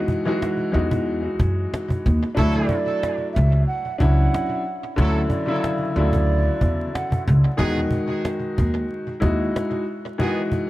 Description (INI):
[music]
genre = hip hop, boom-bap hip-hop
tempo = 92 BPM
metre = 4/4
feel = swing 56% on 16ths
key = unclear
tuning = A4 = 440 Hz
[part]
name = warm upright piano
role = accompaniment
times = 0.0-10.7 s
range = C#3 to F#4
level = -24 LUFS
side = left 1 dB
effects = high-pass filter, low-pass filter, tape echo
[part]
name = upright bass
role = bass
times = 0.0-9.5 s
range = C#2 to F#2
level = -20 LUFS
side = equal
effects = none
[part]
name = cajon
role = drums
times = 0.1-10.7 s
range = none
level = -27 LUFS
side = equal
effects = tape echo
[part]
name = clear horn section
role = stabs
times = 2.4-10.4 s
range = D#3 to A4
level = -32 LUFS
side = right 2 dB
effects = high-pass filter, low-pass filter, tape echo
[part]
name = breathy mellow concert flute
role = melody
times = 2.7-7.2 s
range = D5 to F#5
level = -28 LUFS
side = right 4 dB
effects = high-pass filter, low-pass filter, tape echo
[sound]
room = studio reverb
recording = echo-heavy mix, vinyl crackle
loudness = -19 LUFS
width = side -16 dB against mid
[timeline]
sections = 0.0-10.7 A section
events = none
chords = 0.0 Emaj9; 2.4 Dmaj9; 7.6 Emaj9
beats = 0.41 1.06 1.72 | 2.37 3.02 3.67 4.33 | 4.98 5.63 6.28 6.93 | 7.59 8.24 8.89 9.54 | 10.20